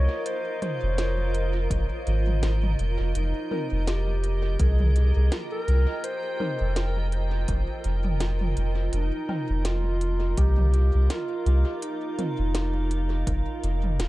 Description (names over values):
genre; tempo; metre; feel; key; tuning
ambient dub; 83 BPM; 4/4; swing 57% on 16ths; unclear; A4 = 440 Hz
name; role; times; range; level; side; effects
mellow clarinet; melody; 0.0-14.1 s; Eb4 to Db5; -32 LUFS; equal; dub echo
granular cloud pad; sustained chords; 0.0-14.1 s; F4 to Bb5; -34 LUFS; right 1 dB; built-in reverb
soft dub sub bass; bass; 0.0-14.1 s; Eb1 to C2; -23 LUFS; equal; none
organic electronic drum kit; drums; 0.3-14.1 s; hi-hat, snare drum, toms; -34 LUFS; right 1 dB; dub echo
filtered dub chord stab; stabs; 0.6-12.3 s; C4 to Bb4; -41 LUFS; left 3 dB; none
electronic kick drum; drums; 1.7-13.4 s; none; -29 LUFS; equal; none
room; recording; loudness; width
digital ambience; echo-heavy mix; -23 LUFS; side -17 dB against mid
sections
0.0-14.1 A section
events
none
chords
0.0 Fm7; 3.2 Cm7/F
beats
| 0.26 0.98 1.71 2.43 | 3.15 3.87 4.60 5.32 | 6.04 6.76 7.49 8.21 | 8.93 9.66 10.38 11.10 | 11.82 12.55 13.27 13.99